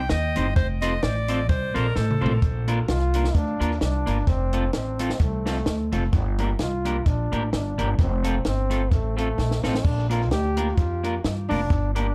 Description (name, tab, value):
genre	ska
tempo	129 BPM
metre	4/4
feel	swing 56% on 8ths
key	Bb major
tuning	A4 = 440 Hz
part	edgy alto saxophone	melody	0.0-2.4 s	A4 to G5	-32 LUFS	equal	tape echo, plate reverb
part	upright bass	bass	0.0-12.1 s	F1 to G2	-27 LUFS	equal	none
part	clean electric guitar	accompaniment	0.1-12.1 s	A3 to C5	-33 LUFS	equal	tape echo, plate reverb
part	compact cocktail drum kit	drums	0.1-12.1 s	hi-hat, kick drum, snare drum, splash cymbal, toms	-28 LUFS	equal	tape echo
part	clear trombone	melody	2.9-12.1 s	A3 to G4	-31 LUFS	equal	tape echo, plate reverb
room	little or no reverb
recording	dark, warm production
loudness	-24 LUFS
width	mono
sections	0.0-2.4 A section; 2.4-12.1 B section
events	alto saxophone solo 0.0-2.4; drum fill 2.0-2.4, 9.4-9.8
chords	0.0 Cm; 0.6 F; 2.4 Bb; 4.3 F; 6.1 Gm; 8.0 F; 9.8 Bb